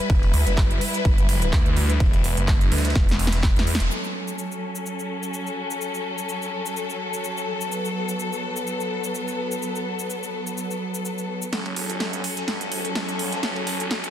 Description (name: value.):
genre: bass house.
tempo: 126 BPM.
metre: 4/4.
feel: swing 55% on 16ths.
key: F# phrygian.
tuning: A4 = 441 Hz.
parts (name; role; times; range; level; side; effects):
bright studio string section; sustained chords; 0.0-14.1 s; F#3 to B4; -27 LUFS; left 1 dB; sidechain pumping, low-pass filter.
phased detuned saw bass; bass; 0.1-3.9, 11.5-14.1 s; E1 to E2; -24 LUFS; equal; phaser, tube saturation, sidechain pumping, high-pass filter.
breakbeat sampler-style drum kit; drums; 0.1-3.9, 11.5-14.1 s; hi-hat, ride cymbal, snare drum; -36 LUFS; right 3 dB; high-pass filter on cymbals, high-pass filter on snare, high-pass filter on hats, high-pass filter on room.
electronic kick drum; drums; 0.1-3.5 s; none; -20 LUFS; equal; none.
big-room dance drum kit; drums; 0.3-14.1 s; handclaps, hi-hat, shaker, snare drum; -29 LUFS; right 1 dB; overdrive.
room: light reverb.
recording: dense, heavily limited modern master.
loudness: -22 LUFS.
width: side -11 dB against mid.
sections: 0.0-3.9 A section; 3.9-11.5 B section; 11.5-14.1 C section.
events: drum fill 3.0-3.9, 11.5-14.1; band accent 3.7; build-up 11.5-14.1.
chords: 0.0 Em; 3.9 F#m.